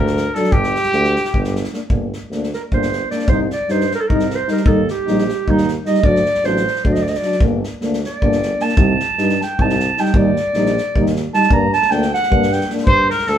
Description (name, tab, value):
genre	balkan folk, Balkan brass band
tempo	306 BPM (eighths)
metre	7/8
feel	straight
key	G harmonic minor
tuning	A4 = 438 Hz
part	warm trumpet	melody	0.0-1.6, 12.9-13.4 s	G4 to C5	-17 LUFS	left 1 dB	none
part	warm clarinet	second line	0.0-13.4 s	Eb4 to Bb5	-19 LUFS	right 3 dB	none
part	warm tuba	bass	0.0-13.4 s	G1 to G2	-22 LUFS	equal	none
part	natural country drum kit	percussion	0.1-13.3 s	kick drum, snare drum	-20 LUFS	equal	none
part	dark euphonium	accompaniment	0.4-12.9 s	F#3 to Bb3	-22 LUFS	right 2 dB	none
part	warm French horn	accompaniment	0.4-12.9 s	D4 to Eb4	-24 LUFS	left 7 dB	none
room	moderate studio reverb, RT60 0.9 s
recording	band playing live in one room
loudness	-14 LUFS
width	side -10 dB against mid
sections	0.0-1.9 A section; 1.9-12.9 B section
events	clarinet solo 1.9-12.9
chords	0.0 D; 0.5 G5; 1.9 Gm; 3.3 Cm; 4.7 Eb; 6.0 D; 7.4 Gm; 8.8 Cm; 10.1 Eb; 11.5 Gm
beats	0.14 0.33 | 0.53 0.72 0.92 1.12 1.31 1.51 1.71 | 1.91 2.10 2.30 2.50 2.69 2.89 3.09 | 3.29 3.48 3.68 3.88 4.07 4.27 4.47 | 4.66 4.86 5.06 5.25 5.45 5.65 5.84 | 6.04 6.24 6.43 6.63 6.82 7.02 7.22 | 7.41 7.61 7.80 8.00 8.20 8.39 8.59 | 8.78 8.98 9.17 9.37 9.56 9.76 9.95 | 10.15 10.34 10.54 10.73 10.93 11.12 11.32 | 11.51 11.71 11.90 12.10 12.29 12.49 12.68 | 12.88 13.07 13.27